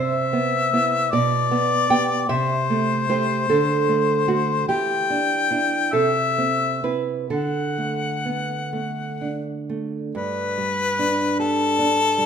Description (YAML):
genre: romantic duo for harmonica and classical guitar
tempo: 41-53 BPM (dotted quarters)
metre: 6/8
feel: rubato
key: G major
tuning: A4 = 440 Hz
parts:
  - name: warm harmonica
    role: melody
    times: 0.0-12.3 s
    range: A4 to G5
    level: -22 LUFS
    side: left 5 dB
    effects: none
  - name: nylon-string guitar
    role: accompaniment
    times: 0.0-12.3 s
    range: G2 to G5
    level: -22 LUFS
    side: right 4 dB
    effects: none
room: moderate recital hall reverb, RT60 1.7 s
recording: minimal, uncompressed stereo recording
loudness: -19 LUFS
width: side -7 dB against mid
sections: 0.0-10.2 A section; 10.2-12.3 B section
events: none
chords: 0.0 Cmaj7; 1.1 G/B; 2.3 Am7/C; 3.5 D5; 4.7 Em7; 5.9 Am/C; 7.3 D; 10.2 G